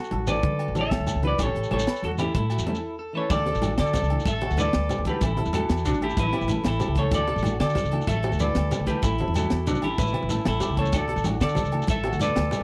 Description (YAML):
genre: highlife guitar band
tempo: 126 BPM (dotted quarters)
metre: 12/8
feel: straight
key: D major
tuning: A4 = 442 Hz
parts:
  - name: semi-hollow electric guitar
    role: melody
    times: 0.0-12.6 s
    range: D4 to E5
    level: -30 LUFS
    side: equal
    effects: none
  - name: warm trumpet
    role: second line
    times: 0.0-12.6 s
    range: D4 to B4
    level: -38 LUFS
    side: equal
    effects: none
  - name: shekere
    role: percussion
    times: 0.0-12.6 s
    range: none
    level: -37 LUFS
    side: equal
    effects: none
  - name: electric guitar at the edge of break-up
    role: arpeggios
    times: 0.1-12.6 s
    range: F#4 to B4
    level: -38 LUFS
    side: equal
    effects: phaser
  - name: upright bass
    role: bass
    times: 0.1-12.6 s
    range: A1 to D3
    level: -30 LUFS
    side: equal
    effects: none
  - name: tight funk drum kit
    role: drums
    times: 0.1-12.6 s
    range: crash cymbal, hi-hat, kick drum, snare drum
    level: -30 LUFS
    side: equal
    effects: none
  - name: congas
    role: percussion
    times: 0.1-12.6 s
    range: none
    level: -34 LUFS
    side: equal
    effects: none
  - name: fingerpicked steel-string acoustic guitar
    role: accompaniment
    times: 0.3-12.3 s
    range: E3 to F#4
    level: -35 LUFS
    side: equal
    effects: none
  - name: agogo bells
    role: percussion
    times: 0.3-12.6 s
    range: none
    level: -41 LUFS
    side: equal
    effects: none
room: little or no reverb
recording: dry, close 1970s-style studio recording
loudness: -25 LUFS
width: mono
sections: 0.0-3.3 A section; 3.3-12.6 B section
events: break 2.8-3.3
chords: 0.0 Dadd9; 1.4 A; 3.3 Dadd9; 5.2 A; 7.1 Dadd9; 9.0 A; 10.9 Dadd9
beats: 0.44 0.91 | 1.39 1.87 2.35 2.83 | 3.31 3.78 4.26 4.74 | 5.21 5.69 6.17 6.65 | 7.12 7.60 8.08 8.55 | 9.03 9.51 9.99 10.46 | 10.94 11.42 11.89 12.37